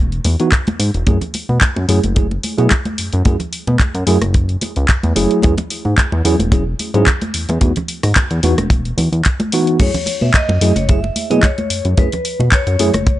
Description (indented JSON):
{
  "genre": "nu-disco, nu disco",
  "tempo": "110 BPM",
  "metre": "4/4",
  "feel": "swing 54% on 16ths",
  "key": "F# dorian",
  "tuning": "A4 = 439 Hz",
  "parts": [
    { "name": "chorused synth bass", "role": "bass", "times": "0.0-13.2 s", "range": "E1 to B2", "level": "-16 LUFS", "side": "equal", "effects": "none" },
    { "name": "house drum kit", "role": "drums", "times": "0.1-13.2 s", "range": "crash cymbal, handclaps, hi-hat, rim click", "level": "-20 LUFS", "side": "equal", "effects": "none" },
    { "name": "congas", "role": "percussion", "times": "0.3-13.0 s", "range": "none", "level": "-23 LUFS", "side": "equal", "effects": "none" },
    { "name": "tine electric piano", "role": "accompaniment", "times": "0.4-12.9 s", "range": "E3 to G#4", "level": "-19 LUFS", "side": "right 1 dB", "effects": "fast stereo tremolo, sidechain pumping, low-pass filter, tape echo" },
    { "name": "kick drum", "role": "drums", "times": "0.5-13.2 s", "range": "none", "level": "-14 LUFS", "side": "equal", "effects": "none" },
    { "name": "vibraphone with medium hard mallets", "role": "melody", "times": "9.8-13.2 s", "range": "B4 to E5", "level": "-22 LUFS", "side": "left 2 dB", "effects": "none" }
  ],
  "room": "little or no reverb",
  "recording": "dry, gritty hardware recording, nothing above 10.5 kHz",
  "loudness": "-13 LUFS",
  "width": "side -15 dB against mid",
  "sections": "0.0-13.2 A section",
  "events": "none",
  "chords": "0.0 E; 1.1 F#m9; 5.4 E69; 7.3 Emaj7sus2; 9.8 F#m9",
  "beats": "0.53 | 1.07 1.62 2.16 2.71 | 3.25 3.80 4.34 4.89 | 5.43 5.98 6.53 7.07 | 7.62 8.16 8.71 9.25 | 9.80 10.34 10.89 11.43 | 11.98 12.53 13.07"
}